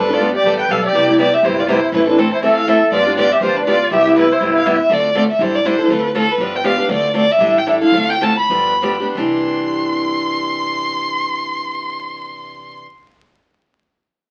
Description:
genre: acoustic string swing (jazz manouche)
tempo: 169-242 BPM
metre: 4/4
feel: swing 56% on 8ths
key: C major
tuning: A4 = 439 Hz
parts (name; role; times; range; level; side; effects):
- warm violin; melody; 0.0-12.8 s; A4 to C6; -19 LUFS; equal; none
- musette accordion; second line; 0.0-4.8 s; C4 to B4; -22 LUFS; equal; none
- picked steel-string acoustic guitar; accompaniment; 0.0-12.9 s; C3 to A4; -20 LUFS; equal; none
- upright bass; bass; 0.0-12.8 s; G1 to E2; -34 LUFS; equal; none
room: wet studio ambience, RT60 0.5 s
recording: very old 78 rpm record, vinyl crackle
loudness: -16 LUFS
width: mono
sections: 0.0-4.9 A section; 4.9-9.2 B section; 9.2-12.0 C section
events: slowing down 6.9-9.2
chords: 0.0 Gadd9; 0.9 Cmaj7; 1.9 Am; 2.9 G7; 3.9 Cmaj7; 4.9 Dm7; 5.4 A7sus4; 5.9 Dm7; 6.4 G7; 6.9 Dm7; 7.4 A7sus4; 7.9 Dm7; 8.5 G7; 9.2 Cadd9

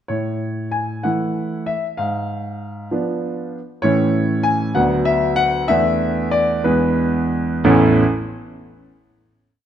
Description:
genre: classical-period piano sonatina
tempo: 58-66 BPM (dotted quarters)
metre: 6/8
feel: rubato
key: A major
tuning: A4 = 440 Hz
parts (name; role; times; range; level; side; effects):
- clear concert grand piano; solo; 0.1-8.0 s; A1 to G#5; -17 LUFS; equal; none
room: moderate recital hall reverb, RT60 1.6 s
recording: dark, warm production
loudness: -16 LUFS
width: side -9 dB against mid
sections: 0.1-7.7 A section; 7.7-9.6 final chord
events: none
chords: 0.1 A; 2.0 G#dim7; 3.8 A; 4.8 Bm/D; 5.7 E7sus4; 6.7 E7; 7.7 A

